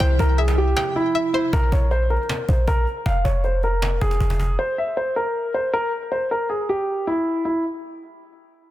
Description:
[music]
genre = hip hop, trap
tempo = 157 BPM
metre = 4/4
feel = half-time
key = F harmonic minor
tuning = A4 = 440 Hz
[part]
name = dark concert grand piano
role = melody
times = 0.0-7.6 s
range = E4 to F5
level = -22 LUFS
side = equal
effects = low-pass filter, ping-pong delay
[part]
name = string-like resonator pluck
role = second line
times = 0.0-1.5 s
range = C5 to G5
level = -28 LUFS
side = left 3 dB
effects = chorus, ping-pong delay
[part]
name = glassy FM pad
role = sustained chords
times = 0.0-1.5 s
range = C3 to E4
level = -31 LUFS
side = right 1 dB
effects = ensemble chorus, built-in reverb
[part]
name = clean 808-style bass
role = bass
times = 0.0-4.6 s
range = F1 to C2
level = -20 LUFS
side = equal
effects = none
[part]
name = cajon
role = drums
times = 0.0-4.5 s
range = none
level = -29 LUFS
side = equal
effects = none
[sound]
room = light reverb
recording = dense, heavily limited modern master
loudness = -19 LUFS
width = side -14 dB against mid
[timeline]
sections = 0.0-1.5 A section; 1.5-7.6 B section; 7.6-8.7 C section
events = break 0.8-1.5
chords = 0.0 C; 1.5 Bbsus2; 3.1 Fm; 4.6 N.C.

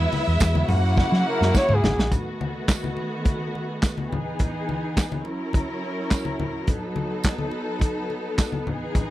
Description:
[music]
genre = disco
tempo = 105 BPM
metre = 4/4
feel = straight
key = unclear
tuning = A4 = 437 Hz
[part]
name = warm studio violin section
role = second line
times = 0.0-2.1 s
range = E4 to F#5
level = -27 LUFS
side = right 1 dB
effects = none
[part]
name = rich studio string section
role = sustained chords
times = 0.0-9.1 s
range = C#3 to A#4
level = -28 LUFS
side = equal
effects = none
[part]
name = hollow-body short-scale fingered electric bass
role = bass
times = 0.0-2.1 s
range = G#1 to F#3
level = -21 LUFS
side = equal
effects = none
[part]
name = warm soul drum kit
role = drums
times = 0.1-9.1 s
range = handclaps, hi-hat, kick drum, snare drum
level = -21 LUFS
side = equal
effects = none
[part]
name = congas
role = percussion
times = 0.1-9.1 s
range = none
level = -31 LUFS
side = left 3 dB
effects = none
[part]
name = tambourine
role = percussion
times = 0.4-8.5 s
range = none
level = -36 LUFS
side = right 15 dB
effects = none
[part]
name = warm flugelhorn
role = melody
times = 1.3-2.1 s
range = G#4 to C#5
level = -23 LUFS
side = equal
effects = none
[sound]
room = little or no reverb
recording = dry, close 1970s-style studio recording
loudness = -22 LUFS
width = side -15 dB against mid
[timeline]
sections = 0.0-2.1 A section; 2.1-9.1 B section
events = flugelhorn solo 0.0-2.1; drum fill 1.0-2.1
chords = 0.0 E; 0.7 F#7; 2.1 B7; 4.1 Emaj7; 5.2 F#7; 6.7 B7

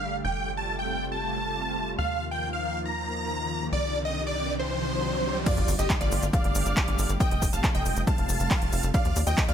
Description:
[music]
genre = uplifting trance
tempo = 138 BPM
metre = 4/4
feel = straight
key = G minor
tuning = A4 = 440 Hz
[part]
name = big supersaw lead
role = melody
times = 0.0-9.5 s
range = F4 to Bb5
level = -30 LUFS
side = equal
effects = phaser, sidechain pumping, ping-pong delay
[part]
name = analog string pad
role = sustained chords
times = 0.0-9.5 s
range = C3 to G4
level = -34 LUFS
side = equal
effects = ensemble chorus, sidechain pumping
[part]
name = tight sequencer bass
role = bass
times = 0.0-9.5 s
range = F1 to Eb2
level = -31 LUFS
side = equal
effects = sidechain pumping
[part]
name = riser and sub drop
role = sound effects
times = 3.4-7.2 s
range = none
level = -35 LUFS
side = right 1 dB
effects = none
[part]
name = wide unison pluck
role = second line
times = 5.5-9.5 s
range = D5 to A5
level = -36 LUFS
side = equal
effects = sidechain pumping, ping-pong delay
[part]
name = big-room dance drum kit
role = drums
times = 5.5-9.5 s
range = crash cymbal, handclaps, hi-hat, shaker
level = -31 LUFS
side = equal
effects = overdrive
[part]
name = electronic kick drum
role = drums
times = 5.5-9.5 s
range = none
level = -25 LUFS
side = equal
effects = overdrive
[sound]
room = digital ambience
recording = none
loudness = -24 LUFS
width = side -9 dB against mid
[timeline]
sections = 0.0-5.5 A section; 5.5-9.5 B section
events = riser 3.4-5.5; drop 5.5-9.5; impact 5.5-7.2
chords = 0.2 Fadd9; 2.0 Ebsus2; 3.7 Cmadd9; 5.5 Gsus2; 7.2 Fadd9; 8.9 Ebsus2

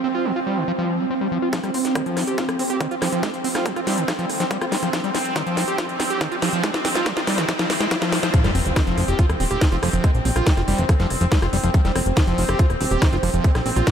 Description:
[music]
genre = psychedelic trance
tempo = 141 BPM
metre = 4/4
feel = straight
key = unclear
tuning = A4 = 440 Hz
[part]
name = bubbling stepped-filter texture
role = sustained chords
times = 0.0-13.9 s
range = C4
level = -26 LUFS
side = right 2 dB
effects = chorus, built-in reverb, sidechain pumping
[part]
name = screaming distorted acid line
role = riff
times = 0.0-13.9 s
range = Eb3 to G4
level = -24 LUFS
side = moving between left 6 dB and right 5 dB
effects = distortion, chorus, auto-pan, sidechain pumping, ping-pong delay
[part]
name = electronic kick drum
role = drums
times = 1.5-13.9 s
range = none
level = -20 LUFS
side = equal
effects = high-pass filter on kick, high-pass filter on room
[part]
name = garage drum kit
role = drums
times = 1.5-13.9 s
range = hi-hat, rim click, snare drum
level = -25 LUFS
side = equal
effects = none
[part]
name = riser and sub drop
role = sound effects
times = 4.5-10.0 s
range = none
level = -32 LUFS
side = right 1 dB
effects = none
[part]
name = plucky analog bass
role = bass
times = 8.4-13.8 s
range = Eb1 to Bb1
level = -22 LUFS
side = equal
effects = none
[sound]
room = moderate huge ambient reverb, RT60 8.6 s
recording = dreamy mix soaked in reverb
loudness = -18 LUFS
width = side -8 dB against mid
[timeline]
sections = 0.0-1.5 A section; 1.5-8.3 B section; 8.3-13.9 C section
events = filter sweep on synth texture 0.0-1.5; build-up 1.5-8.3; drum fill 1.5-8.3; drop 8.3-13.9; impact 8.3-10.0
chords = 0.0 F5

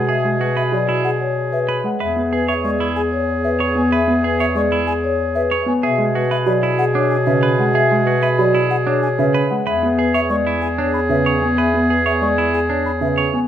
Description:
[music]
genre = classical, minimalist pattern music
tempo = 188 BPM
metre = 6/4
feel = straight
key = unclear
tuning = A4 = 442 Hz
[part]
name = marimba with medium mallets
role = melody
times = 0.0-13.5 s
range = G#4 to G#5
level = -21 LUFS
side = left 5 dB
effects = none
[part]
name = warm oboe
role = second line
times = 0.0-13.3 s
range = G#4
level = -23 LUFS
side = right 2 dB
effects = none
[part]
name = warm concert grand piano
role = accompaniment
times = 0.0-13.5 s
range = C#3 to B3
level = -22 LUFS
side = right 2 dB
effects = none
[part]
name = mellow bass clarinet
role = bass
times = 0.0-13.4 s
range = E2 to B2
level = -21 LUFS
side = equal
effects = none
[part]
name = clean electric guitar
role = arpeggios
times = 0.1-13.4 s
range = D4 to C#5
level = -24 LUFS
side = right 7 dB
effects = none
[part]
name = mellow hollow concert flute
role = arpeggios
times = 0.6-13.1 s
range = E5 to C#6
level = -27 LUFS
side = left 2 dB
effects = none
[sound]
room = moderate large studio reverb, RT60 1.2 s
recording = none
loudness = -15 LUFS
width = side -10 dB against mid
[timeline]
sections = 0.0-13.5 A section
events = none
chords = 0.0 B5; 2.0 E; 5.8 B5; 9.7 E

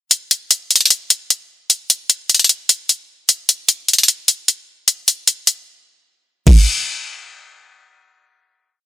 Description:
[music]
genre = hip hop, trap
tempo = 151 BPM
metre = 4/4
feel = half-time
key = none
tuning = none
[part]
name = trap drum kit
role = drums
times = 0.1-6.6 s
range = crash cymbal, hi-hat, kick drum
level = -10 LUFS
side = equal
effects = none
[sound]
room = little or no reverb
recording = none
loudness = -13 LUFS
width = side -13 dB against mid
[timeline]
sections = 0.1-6.5 breakdown; 6.5-8.9 final hit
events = break 5.7-6.5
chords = none

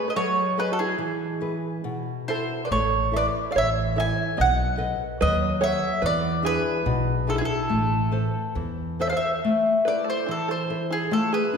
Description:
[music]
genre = fado-style ballad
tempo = 71 BPM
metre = 2/4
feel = rubato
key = A harmonic minor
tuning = A4 = 440 Hz
[part]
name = mandolin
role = melody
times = 0.0-11.6 s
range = G#4 to G#5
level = -25 LUFS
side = equal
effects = none
[part]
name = open-back banjo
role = second line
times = 0.0-11.6 s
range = E4 to E5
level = -29 LUFS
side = right 3 dB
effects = none
[part]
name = nylon-string guitar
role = accompaniment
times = 0.0-11.6 s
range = B2 to F#5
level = -28 LUFS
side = left 2 dB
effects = none
[part]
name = upright bass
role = bass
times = 2.7-9.1 s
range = A1 to E2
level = -27 LUFS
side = right 1 dB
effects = none
[sound]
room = wet scoring stage reverb, RT60 1.9 s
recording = recorded in a church or concert hall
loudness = -22 LUFS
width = side -6 dB against mid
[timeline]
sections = 0.0-9.4 A section; 9.4-11.6 A section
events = none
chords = 0.0 B7; 1.0 E; 2.7 A; 4.4 B7; 6.0 E7; 7.7 Amadd9; 9.4 Am

